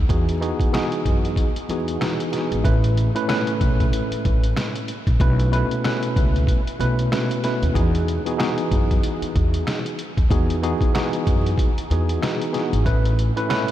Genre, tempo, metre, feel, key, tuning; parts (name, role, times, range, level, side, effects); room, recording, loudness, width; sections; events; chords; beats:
hip hop, boom-bap hip-hop; 94 BPM; 4/4; swing 58% on 16ths; E major; A4 = 440 Hz
upright bass; bass; 0.0-13.3 s; G#1 to F#2; -22 LUFS; equal
tine electric piano; accompaniment; 0.1-13.7 s; A2 to B4; -23 LUFS; equal; overdrive, fast stereo tremolo, high-pass filter, low-pass filter
trip hop sampler-style drum kit; drums; 0.1-13.7 s; hi-hat, kick drum, rim click, snare drum; -22 LUFS; equal; vintage 12-bit sampler grit
light reverb, digital ambience; vinyl crackle; -18 LUFS; side -13 dB against mid
0.0-2.6 A section; 2.6-13.7 B section
0.0 Emaj7; 2.6 Aadd9; 5.2 B7sus4; 7.8 Emaj7; 12.9 Aadd9
| 0.09 0.73 1.37 2.01 | 2.65 3.29 3.92 4.56 | 5.20 5.84 6.48 7.12 | 7.75 8.39 9.03 9.67 | 10.31 10.95 11.58 12.22 | 12.86 13.50